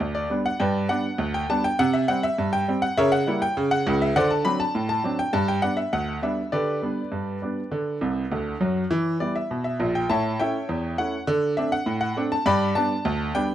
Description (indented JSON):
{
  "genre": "ragtime piano",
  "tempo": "101 BPM",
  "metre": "2/4",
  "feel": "straight",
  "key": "G major",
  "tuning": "A4 = 440 Hz",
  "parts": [
    { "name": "bright baby grand piano", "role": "solo", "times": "0.0-13.5 s", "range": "Bb1 to B5", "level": "-22 LUFS", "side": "equal", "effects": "none" }
  ],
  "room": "light reverb, studio ambience",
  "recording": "dry, close 1970s-style studio recording",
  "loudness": "-22 LUFS",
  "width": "side -11 dB against mid",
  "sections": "0.0-13.5 A section",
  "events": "grand piano fill 8.0-8.9",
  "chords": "0.0 G; 1.8 C5; 3.0 C#dim7; 4.1 D7; 5.3 G; 6.5 G/D; 7.7 D; 8.9 Em; 10.1 A7; 11.3 D5; 12.5 G",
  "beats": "0.00 | 0.59 1.18 | 1.78 2.37 | 2.96 3.55 | 4.14 4.74 | 5.33 5.92 | 6.52 7.11 | 7.71 8.31 | 8.91 9.50 | 10.10 10.69 | 11.28 11.87 | 12.46 13.06"
}